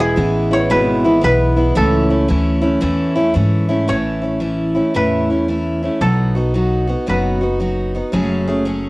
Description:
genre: honky-tonk and classic country.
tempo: 113 BPM.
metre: 4/4.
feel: swing 65% on 8ths.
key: A major.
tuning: A4 = 440 Hz.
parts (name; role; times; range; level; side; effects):
koto; melody; 0.0-8.9 s; G#4 to C#5; -20 LUFS; equal; none.
picked steel-string acoustic guitar; accompaniment; 0.0-8.9 s; E2 to G#4; -16 LUFS; equal; cassette tape.
upright bass; bass; 0.0-8.9 s; E1 to G#2; -19 LUFS; equal; none.
room: moderate studio reverb, RT60 0.6 s.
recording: home recording on cassette.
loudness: -14 LUFS.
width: side -22 dB against mid.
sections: 0.0-3.9 A section; 3.9-8.9 B section.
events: none.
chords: 0.0 E; 1.8 A; 6.0 B; 8.1 F#madd9.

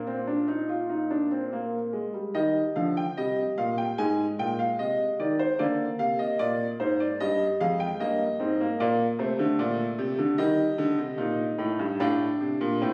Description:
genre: classical, baroque-style 3-part fugue for grand piano.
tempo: 74 BPM.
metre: 4/4.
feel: straight.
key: Eb major.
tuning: A4 = 440 Hz.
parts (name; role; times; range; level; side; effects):
warm baby grand piano; solo; 0.0-12.9 s; F2 to Ab5; -27 LUFS; equal; none.
room: wet recital hall reverb, RT60 1.5 s.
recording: recorded on a phone in the room, club reverb, compression.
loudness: -27 LUFS.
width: mono.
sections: 0.0-2.3 A section; 2.3-12.9 B section.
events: none.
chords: 0.0 Bb; 2.3 Eb; 4.0 Ab; 5.6 Bb7; 7.2 Eb; 8.8 Bb; 10.4 Eb; 12.0 F/A.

